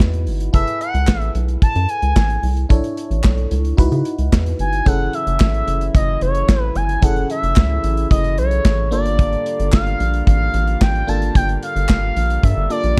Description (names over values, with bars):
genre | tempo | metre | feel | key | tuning
early-eighties boogie funk | 111 BPM | 4/4 | straight | F# minor | A4 = 440 Hz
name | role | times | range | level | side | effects
FM electric piano | accompaniment | 0.0-13.0 s | Bb3 to C#5 | -29 LUFS | equal | chorus, phaser
rubbery square bass | bass | 0.0-12.9 s | F#1 to C#3 | -22 LUFS | equal | none
modern studio drum kit | drums | 0.0-13.0 s | hi-hat, kick drum, snare drum | -18 LUFS | equal | none
group handclap | percussion | 0.0-12.0 s | none | -34 LUFS | equal | none
expressive portamento lead | melody | 0.5-13.0 s | C#5 to A5 | -24 LUFS | equal | chorus
pipe organ, cornet | sustained chords | 4.9-13.0 s | C#3 to F4 | -34 LUFS | equal | none
room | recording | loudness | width
small room ambience | dark, warm production | -17 LUFS | mono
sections
0.0-4.9 A section; 4.9-13.0 B section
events
none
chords
0.0 C#m11 (rootless); 0.5 F#m11; 2.7 Bm11; 3.8 C#m11; 4.9 F#m9; 8.9 Gm9